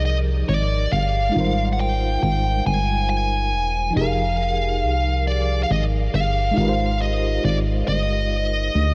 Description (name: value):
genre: slow six-eight R&B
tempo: 46 BPM (dotted quarters)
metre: 6/8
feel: straight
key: unclear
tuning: A4 = 438 Hz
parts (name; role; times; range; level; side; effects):
- FM electric piano with tremolo; accompaniment; 0.0-8.9 s; F3 to C5; -29 LUFS; equal; none
- solid FM bass; bass; 0.0-8.9 s; E1 to D2; -24 LUFS; equal; none
- bluesy overdriven lead guitar; melody; 0.1-8.9 s; D5 to Ab5; -26 LUFS; equal; distortion, diffuse ambient delay
room: light reverb, digital ambience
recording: faint mains hum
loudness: -21 LUFS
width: mono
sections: 0.0-8.9 A section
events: none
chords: 0.0 Fm11; 1.3 Abmaj13; 4.0 Fm11; 6.6 Abmaj13